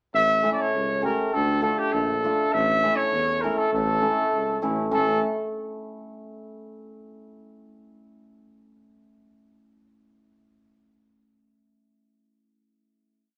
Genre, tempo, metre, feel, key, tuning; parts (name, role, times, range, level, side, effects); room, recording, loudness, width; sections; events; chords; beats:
klezmer; 100 BPM; 2/4; straight; A phrygian dominant; A4 = 435 Hz
warm tuba; bass; 0.1-5.2 s; A1 to E2; -31 LUFS; equal
warm cornet; melody; 0.2-5.2 s; G4 to E5; -25 LUFS; equal
hammered dulcimer; accompaniment; 0.4-5.2 s; A3 to G4; -30 LUFS; equal
moderate studio reverb, RT60 0.9 s; -24 LUFS; mono
0.1-4.9 A section; 4.9-6.1 final chord
0.1 A; 1.3 Dm; 2.5 A
| 0.13 0.73 | 1.33 1.93 | 2.53 3.13 | 3.73 4.32 | 4.92